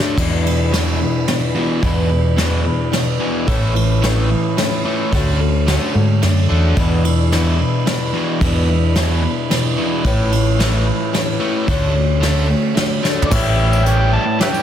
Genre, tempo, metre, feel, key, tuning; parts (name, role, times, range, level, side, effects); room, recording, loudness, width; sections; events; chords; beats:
folk rock and heartland rock; 110 BPM; 3/4; straight; A4 = 440 Hz
picked old ladder-braced acoustic guitar; accompaniment; 0.0-14.6 s; E2 to G4; -22 LUFS; left 3 dB
crunchy overdriven guitar; riff; 0.0-14.6 s; E2 to G4; -21 LUFS; equal
soft brush drum kit; drums; 0.0-14.5 s; crash cymbal, hi-hat, kick drum, ride cymbal, snare drum, toms; -20 LUFS; right 1 dB; soft clipping on snare
hollow-body short-scale fingered electric bass; bass; 0.2-14.2 s; A1 to G#2; -16 LUFS; equal
overdriven harmonica; melody; 13.3-14.6 s; B4 to A5; -20 LUFS; right 2 dB; digital delay
bright upright piano; accompaniment; 13.3-14.6 s; G4 to C#5; -30 LUFS; right 2 dB
tambourine; percussion; 13.3-14.6 s; -34 LUFS; right 6 dB
light reverb, studio ambience; dense, heavily limited modern master; -14 LUFS; side -10 dB against mid
0.2-13.3 A section; 13.3-14.6 B section
drum fill 0.0, 13.0
0.2 E7; 3.5 A; 5.1 Dmaj7; 6.8 E7; 10.1 A; 11.7 Dmaj7; 13.3 A7
| 0.18 0.73 1.28 | 1.83 2.38 2.93 | 3.48 4.03 4.58 | 5.13 5.68 6.22 | 6.77 7.32 7.87 | 8.41 8.96 9.51 | 10.05 10.60 11.14 | 11.69 12.23 12.77 | 13.32 13.86 14.40